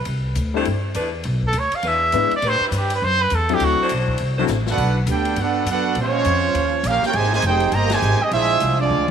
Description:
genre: jazz, big band swing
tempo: 204 BPM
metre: 4/4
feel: swing 63% on 8ths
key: unclear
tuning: A4 = 440 Hz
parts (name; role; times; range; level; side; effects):
- warm trumpet; melody; 0.0-3.9 s; E4 to F5; -20 LUFS; right 2 dB; none
- upright bass; bass; 0.0-9.1 s; F1 to Bb2; -22 LUFS; equal; none
- swinging big-band drum kit; drums; 0.1-9.1 s; crash cymbal, hi-hat, kick drum, ride cymbal, snare drum, toms; -32 LUFS; left 7 dB; none
- warm concert grand piano; accompaniment; 0.5-4.5 s; F#3 to B4; -25 LUFS; left 13 dB; none
- clear saxophone section; sustained chords; 0.6-4.5 s; F#3 to C5; -27 LUFS; left 1 dB; none
- bright trumpet section; melody; 4.7-9.1 s; Ab3 to Bb5; -20 LUFS; right 2 dB; none
- clear trombone section; second line; 4.7-9.1 s; C3 to G4; -23 LUFS; right 11 dB; none
room: moderate echo chamber reverb, RT60 2.2 s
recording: 1960s-style stereo with parts hard left and right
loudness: -17 LUFS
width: side -8 dB against mid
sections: 0.0-4.8 A section; 4.8-9.1 B section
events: trumpet solo 0.0-4.8; drum fill 4.5, 8.9; band accent 7.9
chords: 0.1 C69; 1.3 Bm9; 1.8 E7; 2.4 Am11; 3.6 D9; 4.8 Gmaj9; 6.0 Bbm9; 6.6 Eb9; 7.1 Abmaj7; 8.3 Bb9

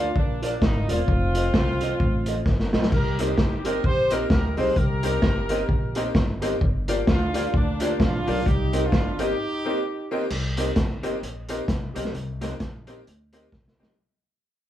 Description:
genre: ska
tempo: 130 BPM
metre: 4/4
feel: swing 59% on 8ths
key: C minor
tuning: A4 = 441 Hz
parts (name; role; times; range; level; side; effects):
- warm horn section; melody; 0.0-10.1 s; Bb3 to C5; -27 LUFS; equal; none
- mellow electric guitar; accompaniment; 0.0-13.9 s; F4 to Eb5; -31 LUFS; right 2 dB; none
- upright bass; bass; 0.0-14.0 s; E1 to D2; -28 LUFS; equal; none
- vintage drum kit; drums; 0.2-13.9 s; crash cymbal, hi-hat, kick drum, snare drum; -24 LUFS; equal; none
- tack piano; stabs; 3.2-13.9 s; Bb3 to G4; -31 LUFS; left 4 dB; none
room: light reverb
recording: band playing live in one room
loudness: -21 LUFS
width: side -12 dB against mid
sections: 0.0-10.3 A section; 10.3-14.0 B section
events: drum fill 2.5-2.9, 13.5-14.0; break 9.4-10.3; fade-out 10.3-14.0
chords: 0.0 Gm7 (rootless); 1.1 F7; 2.9 Cm7; 6.6 Gm7; 8.5 Cm7

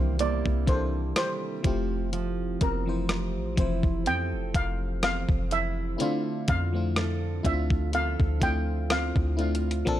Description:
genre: contemporary R&B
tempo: 62 BPM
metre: 4/4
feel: swing 54% on 16ths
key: D minor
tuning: A4 = 440 Hz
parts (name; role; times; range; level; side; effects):
- steel pan; melody; 0.0-9.6 s; Bb4 to G5; -32 LUFS; equal; digital delay
- FM electric piano; accompaniment; 0.0-10.0 s; Eb3 to C5; -32 LUFS; left 3 dB; chorus
- fingerpicked steel-string acoustic guitar; arpeggios; 0.0-10.0 s; Bb2 to A4; -34 LUFS; right 9 dB; digital delay
- warm 808-style bass; bass; 0.0-10.0 s; F1 to F2; -29 LUFS; equal; none
- gated 80s digital drum machine; drums; 0.2-10.0 s; hi-hat, kick drum, rim click; -27 LUFS; equal; overdrive, vintage 12-bit sampler grit
room: digital ambience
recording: none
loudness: -25 LUFS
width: side -12 dB against mid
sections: 0.0-10.0 A section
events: none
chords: 0.0 C7; 1.6 Fmaj7; 6.0 Dm7

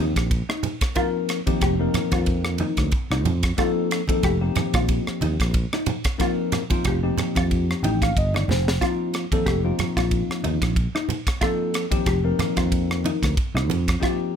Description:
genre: electric jazz fusion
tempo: 92 BPM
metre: 4/4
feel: swing 55% on 16ths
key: F mixolydian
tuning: A4 = 440 Hz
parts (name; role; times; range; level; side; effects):
- mellow tine electric piano; accompaniment; 0.0-14.4 s; F3 to G5; -25 LUFS; left 3 dB; wide subtle chorus
- mellow electric guitar; stabs; 0.0-14.3 s; Eb4 to G4; -28 LUFS; left 1 dB; analog chorus
- sustaining fretless electric bass; bass; 0.0-13.9 s; F1 to F2; -24 LUFS; right 1 dB; none
- crisp fusion drum kit; drums; 0.2-14.2 s; kick drum, ride cymbal, rim click, snare drum; -25 LUFS; right 1 dB; none
- congas; percussion; 0.6-13.9 s; none; -28 LUFS; right 4 dB; none
room: light reverb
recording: none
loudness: -20 LUFS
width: side -8 dB against mid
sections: 0.0-14.4 A section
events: tine electric piano fill 7.5-8.8; drum fill 8.5-8.8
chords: 0.0 F9sus4

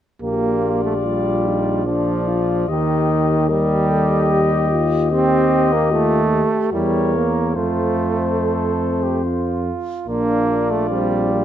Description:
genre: classical, brass quintet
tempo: 73 BPM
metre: 3/4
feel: rubato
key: Bb major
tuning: A4 = 440 Hz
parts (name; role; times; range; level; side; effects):
- mellow trumpet; melody; 0.2-11.4 s; C5 to Eb5; -25 LUFS; left 8 dB; none
- mellow flugelhorn; second line; 0.2-11.4 s; F4 to Bb4; -26 LUFS; right 6 dB; none
- bright trombone; accompaniment; 0.2-11.4 s; Eb3 to C4; -20 LUFS; right 3 dB; none
- mellow French horn; accompaniment; 0.2-11.4 s; Bb3 to Bb4; -24 LUFS; left 6 dB; none
- mellow bass trombone; bass; 0.2-11.4 s; Bb1 to F2; -22 LUFS; equal; none
room: light reverb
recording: close, detailed microphones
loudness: -16 LUFS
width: side -10 dB against mid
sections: 0.2-11.4 A section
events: none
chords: 0.2 Bb; 2.7 Eb; 6.7 Edim7; 7.6 F; 10.1 Bb

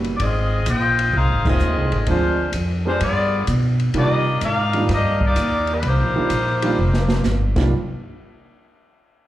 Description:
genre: jazz, big band swing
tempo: 128 BPM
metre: 4/4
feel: swing 67% on 8ths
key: C minor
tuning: A4 = 442 Hz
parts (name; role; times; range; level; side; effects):
- warm upright piano; accompaniment; 0.0-7.7 s; Eb3 to G4; -24 LUFS; right 3 dB; slapback echo
- upright bass; bass; 0.0-7.7 s; F1 to C3; -20 LUFS; equal; none
- open jazz drum kit; drums; 0.0-7.6 s; crash cymbal, hi-hat, kick drum, ride cymbal, snare drum; -26 LUFS; equal; none
- mellow saxophone section; melody; 0.2-7.3 s; G3 to G5; -21 LUFS; left 2 dB; slapback echo
room: light reverb, studio ambience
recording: live gig heard through the venue's PA, club reverb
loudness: -17 LUFS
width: side -14 dB against mid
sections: 0.0-7.7 A section; 7.7-9.3 B section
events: band accent 1.4; drum fill 6.8-7.2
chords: 0.2 Ab6; 2.1 Dm7b5; 3.0 G7b9; 4.0 Cm11; 7.7 N.C.

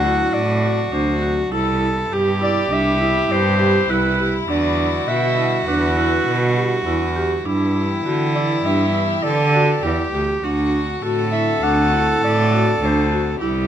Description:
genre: contemporary instrumental, chamber music in an uneven meter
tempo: 101 BPM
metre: 5/4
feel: straight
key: unclear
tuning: A4 = 440 Hz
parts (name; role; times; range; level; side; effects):
- clear clarinet; melody; 0.0-13.3 s; B4 to F#5; -22 LUFS; left 1 dB; none
- clear viola; second line; 0.0-13.7 s; E4 to A4; -22 LUFS; right 1 dB; none
- rich chamber string section; sustained chords; 0.0-13.7 s; B2 to G4; -28 LUFS; left 4 dB; none
- vibraphone with medium hard mallets; arpeggios; 0.0-13.7 s; D4 to G4; -23 LUFS; right 1 dB; none
- rich cello; bass; 0.0-13.7 s; C2 to D3; -21 LUFS; right 2 dB; none
room: light reverb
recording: close, detailed microphones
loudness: -16 LUFS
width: side -9 dB against mid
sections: 0.0-13.7 A section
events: none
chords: 0.0 D7; 1.5 Cmaj7; 4.5 Em7; 7.5 G6; 10.4 D7

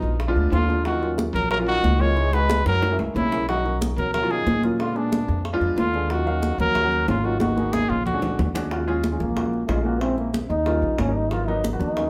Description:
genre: Afro-Cuban jazz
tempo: 184 BPM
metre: 4/4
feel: straight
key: Eb minor from 8.7 s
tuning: A4 = 440 Hz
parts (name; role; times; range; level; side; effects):
- breathy trumpet; melody; 0.0-8.5 s; D4 to C#5; -27 LUFS; equal; none
- warm trombone; second line; 0.0-12.1 s; A#2 to F4; -31 LUFS; equal; none
- warm baby grand piano; accompaniment; 0.0-12.1 s; F#3 to E#5; -30 LUFS; equal; none
- upright bass; bass; 0.0-12.1 s; G#1 to B2; -27 LUFS; equal; none
- bongos; percussion; 0.0-12.1 s; none; -34 LUFS; equal; none
- congas; percussion; 0.0-12.1 s; none; -30 LUFS; equal; none
room: wet studio reverb, RT60 0.6 s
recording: heard from further back in the room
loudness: -22 LUFS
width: mono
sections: 0.0-8.7 A section; 8.7-12.1 B section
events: drum fill 2.2-3.5, 7.4-8.7; trombone solo 8.7-12.1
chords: 0.2 A#7b9; 0.9 D#m9; 2.2 C#m7; 2.8 F#7; 3.5 Bmaj9; 4.8 A#7b9; 6.1 D#m7; 7.4 G#m9; 8.1 A#7alt; 8.7 Ebm11; 10.0 Bbm7b5; 10.7 Eb7; 11.3 Abm9

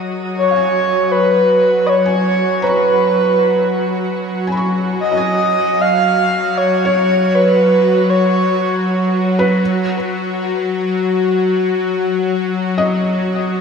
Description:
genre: ambient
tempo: 78 BPM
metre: 3/4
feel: straight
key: unclear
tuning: A4 = 440 Hz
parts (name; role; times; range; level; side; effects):
- bowed-like drone; drone; 0.0-13.6 s; F#3 to F#4; -17 LUFS; left 1 dB; built-in reverb
- breathy flute-like synth lead; melody; 0.4-9.2 s; B4 to E#5; -15 LUFS; right 1 dB; tremolo, wide subtle chorus, shimmer reverb, ping-pong delay
- felt-muted upright piano; arpeggios; 0.5-13.6 s; B4 to C#6; -24 LUFS; left 1 dB; shimmer reverb, ping-pong delay
room: wet plate reverb, RT60 2.4 s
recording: dreamy mix soaked in reverb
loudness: -13 LUFS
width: side -6 dB against mid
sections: 0.4-13.6 A section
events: fade-in on felt piano 0.4-13.6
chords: 0.4 C#9; 9.6 B

